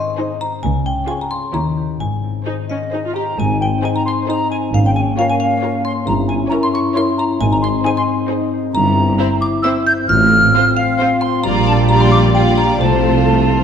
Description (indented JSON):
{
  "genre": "cinematic, playful, whimsical film cue",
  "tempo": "133 BPM",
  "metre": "3/4",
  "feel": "straight",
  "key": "Ab major, F major from 8.7 s",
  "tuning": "A4 = 440 Hz",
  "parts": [
    { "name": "warm studio violin section", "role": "melody", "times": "0.0-13.6 s", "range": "C5 to D5", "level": "-26 LUFS", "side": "left 5 dB", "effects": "none" },
    { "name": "xylophone with wooden mallets", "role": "melody", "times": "0.0-13.6 s", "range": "Eb5 to G6", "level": "-23 LUFS", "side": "left 1 dB", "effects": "none" },
    { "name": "rich studio violin section", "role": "second line", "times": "0.0-13.6 s", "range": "E4 to Bb4", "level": "-27 LUFS", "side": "left 1 dB", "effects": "none" },
    { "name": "rich studio viola section", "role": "accompaniment", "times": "0.0-13.6 s", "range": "G3 to G4", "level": "-24 LUFS", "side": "right 2 dB", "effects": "none" },
    { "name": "concert harp", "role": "arpeggios", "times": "0.0-13.6 s", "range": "G2 to F5", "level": "-22 LUFS", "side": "left 7 dB", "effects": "none" },
    { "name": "rich studio cello section", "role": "bass", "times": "0.6-13.6 s", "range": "Db2 to C3", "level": "-22 LUFS", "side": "right 3 dB", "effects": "none" },
    { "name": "rich studio double bass section", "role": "bass", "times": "0.6-13.6 s", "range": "G1 to Eb2", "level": "-21 LUFS", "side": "right 4 dB", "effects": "none" },
    { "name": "hollow concert flute", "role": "second line", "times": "2.7-13.6 s", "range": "Eb5 to G6", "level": "-18 LUFS", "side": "equal", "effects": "none" },
    { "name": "mellow French horn section", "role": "sustained chords", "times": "3.4-13.6 s", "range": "F3 to F4", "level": "-20 LUFS", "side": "left 3 dB", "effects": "none" },
    { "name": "dark tuba", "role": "bass", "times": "3.4-13.6 s", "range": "G1 to C2", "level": "-22 LUFS", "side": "right 4 dB", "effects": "none" }
  ],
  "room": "wet scoring stage reverb, RT60 1.5 s",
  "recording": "dark, warm production",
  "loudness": "-13 LUFS",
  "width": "side -7 dB against mid",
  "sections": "0.0-3.4 A section; 3.4-13.6 A section",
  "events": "none",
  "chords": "0.0 Ab; 0.6 Db; 1.5 Eb7b9; 2.0 Ab; 4.7 Bbm7/Ab; 6.1 Gdim7; 7.4 Ab; 8.7 C7/G; 10.1 F/A; 11.4 Gm7/Bb; 12.8 F/C"
}